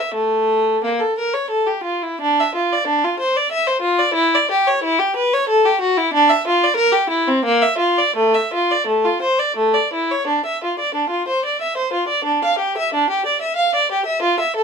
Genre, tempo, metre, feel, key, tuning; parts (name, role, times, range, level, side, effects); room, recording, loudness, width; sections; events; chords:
classical, baroque-style suite movement for unaccompanied violin; 79-95 BPM; 3/4; rubato; D minor; A4 = 440 Hz
rich violin; solo; 0.0-14.6 s; A3 to F5; -16 LUFS; equal
little or no reverb; close, detailed microphones; -15 LUFS; side -6 dB against mid
0.0-10.3 A section; 10.3-14.6 A section